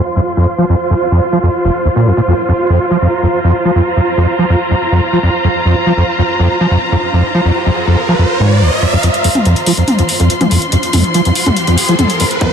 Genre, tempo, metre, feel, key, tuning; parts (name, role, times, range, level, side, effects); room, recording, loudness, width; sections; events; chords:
driving peak-time techno; 142 BPM; 4/4; straight; A4 = 438 Hz
rich studio string section; texture; 0.0-12.5 s; F4 to C6; -15 LUFS; right 1 dB; sidechain pumping
overdriven acid bass; riff; 0.2-12.5 s; F1 to F3; -12 LUFS; equal; distortion, ensemble chorus, sidechain pumping, tape echo
riser; sound effects; 6.8-12.5 s; -19 LUFS; right 1 dB
techno drum kit; drums; 9.0-12.5 s; hi-hat, toms; -15 LUFS; left 1 dB; sidechain pumping on cymbals, sidechain pumping on hats, sidechain pumping on toms
electronic kick drum; drums; 12.4-12.5 s; -14 LUFS; equal; distortion
moderate huge ambient reverb, RT60 7.1 s; high-pass filter, low-pass filter, lossy compression artefacts; -10 LUFS; side -7 dB against mid
0.0-9.0 A section; 9.0-12.5 B section
filter sweep on acid bass 0.0-9.0; filter sweep 0.0-9.0; riser 6.8-9.0, 9.0-12.5; build-up 9.0-12.5
0.0 F5